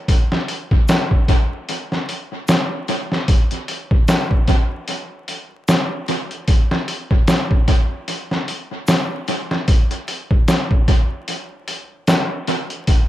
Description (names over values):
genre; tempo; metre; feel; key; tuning
trip hop; 75 BPM; 4/4; swing 57% on 16ths; none; none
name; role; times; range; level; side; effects
trip hop sampler-style drum kit; drums; 0.1-13.1 s; hi-hat, kick drum, snare drum; -16 LUFS; equal; tape echo
egg shaker; percussion; 0.9-12.3 s; none; -39 LUFS; right 2 dB; none
room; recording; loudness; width
light reverb, digital ambience; echo-heavy mix, vinyl crackle; -16 LUFS; side -14 dB against mid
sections
0.0-13.1 A section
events
none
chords
none